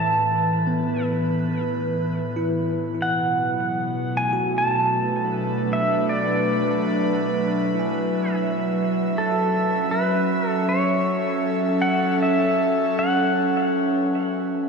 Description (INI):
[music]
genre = ambient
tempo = 78 BPM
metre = 4/4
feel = straight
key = unclear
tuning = A4 = 440 Hz
[part]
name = pedal steel guitar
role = melody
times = 0.0-13.7 s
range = A4 to A5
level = -24 LUFS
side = right 1 dB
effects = ping-pong delay
[part]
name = airy breathy pad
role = sustained chords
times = 0.0-14.7 s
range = A2 to E5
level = -22 LUFS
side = equal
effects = chorus
[part]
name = bell-like tine electric piano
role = arpeggios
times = 0.0-14.7 s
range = B3 to G#5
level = -32 LUFS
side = equal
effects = medium stereo tremolo, ping-pong delay
[sound]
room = wet concert hall reverb, RT60 2.3 s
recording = none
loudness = -20 LUFS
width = side -5 dB against mid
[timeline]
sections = 0.0-14.7 A section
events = fade-out on tine electric piano 0.0-14.7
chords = 0.0 Amadd9; 3.0 Bm7; 9.1 F#m7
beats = 0.68 1.45 2.22 | 2.99 3.76 4.53 5.30 | 6.07 6.84 7.61 8.38 | 9.14 9.91 10.68 11.45 | 12.22 12.99 13.76 14.53